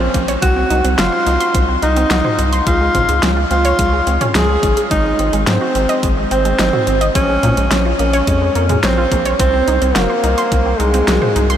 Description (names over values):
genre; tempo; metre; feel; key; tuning
synthwave; 107 BPM; 4/4; straight; unclear; A4 = 440 Hz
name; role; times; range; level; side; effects
breathy tenor saxophone; melody; 0.0-11.5 s; Ab3 to Ab4; -16 LUFS; equal; tape echo
analog pluck; arpeggios; 0.0-11.6 s; Ab3 to C6; -21 LUFS; right 2 dB; chorus, vintage 12-bit sampler grit, analog delay
round analog bass; bass; 0.0-11.6 s; Gb1 to Bb2; -18 LUFS; equal; none
electronic kick drum; drums; 0.1-10.6 s; none; -19 LUFS; equal; overdrive
pop drum kit; drums; 0.1-11.6 s; hi-hat, snare drum, toms; -20 LUFS; equal; overdrive
room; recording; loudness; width
wet huge ambient reverb, RT60 7.4 s; dreamy mix soaked in reverb; -12 LUFS; side -10 dB against mid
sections
0.0-11.6 A section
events
none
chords
0.4 Cdim; 2.7 Dbmaj7; 4.9 Ab7; 7.2 Bbm7; 9.4 Cdim